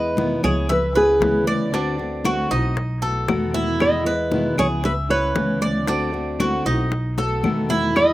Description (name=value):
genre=latin, Cuban son and guajira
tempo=116 BPM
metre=4/4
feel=straight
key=unclear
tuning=A4 = 440 Hz
part: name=nylon-string guitar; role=melody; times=0.0-8.1 s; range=G#4 to D#5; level=-20 LUFS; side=equal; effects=none
part: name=fingerpicked plugged-in steel-string acoustic guitar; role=accompaniment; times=0.0-8.1 s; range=B2 to F#4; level=-25 LUFS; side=left 2 dB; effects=none
part: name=Cuban tres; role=arpeggios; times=0.0-8.1 s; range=D4 to E5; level=-24 LUFS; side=right 2 dB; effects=slapback echo
part: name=upright bass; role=bass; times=0.0-8.1 s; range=B1 to E2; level=-26 LUFS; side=equal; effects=none
part: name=bongos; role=percussion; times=0.2-8.1 s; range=none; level=-28 LUFS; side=left 5 dB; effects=slapback echo
part: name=congas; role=percussion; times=0.2-8.1 s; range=none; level=-27 LUFS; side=left 1 dB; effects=none
part: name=claves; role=percussion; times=0.4-8.1 s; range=none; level=-33 LUFS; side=left 4 dB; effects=slapback echo
room=little or no reverb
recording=recorded outdoors, with no room sound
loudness=-18 LUFS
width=side -16 dB against mid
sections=0.0-8.1 A section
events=drum fill 7.2-8.0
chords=0.0 Emaj7; 0.7 C#m7; 1.7 D7; 2.8 B7; 3.8 Emaj7; 4.8 C#m7; 5.9 D7; 6.9 B7